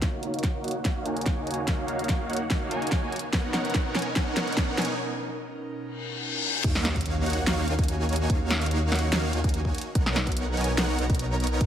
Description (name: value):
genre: future bass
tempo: 145 BPM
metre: 4/4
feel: swing 53% on 16ths, half-time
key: Eb minor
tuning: A4 = 441 Hz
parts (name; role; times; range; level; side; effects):
- airy breathy pad; sustained chords; 0.2-11.7 s; Eb2 to F5; -38 LUFS; right 1 dB; chorus, sidechain pumping
- supersaw chords; riff; 0.0-11.7 s; Bb3 to A#5; -29 LUFS; right 1 dB; sidechain pumping, low-pass filter, tape echo
- electronic kick drum; drums; 0.0-11.7 s; none; -27 LUFS; equal; none
- pop drum kit; drums; 0.0-11.7 s; crash cymbal, hi-hat, snare drum; -30 LUFS; equal; none
- noise sweep, riser, reverse cymbal and impact; sound effects; 0.0-8.3 s; none; -34 LUFS; left 2 dB; none
- wide detuned saw bass; bass; 6.6-11.7 s; B1 to Eb2; -28 LUFS; equal; chorus, sidechain pumping
room: light reverb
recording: none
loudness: -24 LUFS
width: side -10 dB against mid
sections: 0.0-6.6 A section; 6.6-11.7 B section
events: build-up 0.0-6.6; drum fill 0.0-5.0; filter sweep on supersaw synth 0.0-6.6; filter sweep on analog synth pad 0.0-6.6; break 5.0-6.6; reverse cymbal 6.0-6.6; drop 6.6-11.7; impact 6.6-8.3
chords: 0.0 Ebm9; 3.1 Bmaj9; 6.6 Ebm9; 9.7 Bmaj9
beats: | 0.02 0.44 0.85 1.26 | 1.68 2.09 2.50 2.92 | 3.33 3.75 4.16 4.57 | 4.99 5.40 5.82 6.23 | 6.64 7.06 7.47 7.88 | 8.30 8.71 9.12 9.54 | 9.95 10.37 10.78 11.19 | 11.61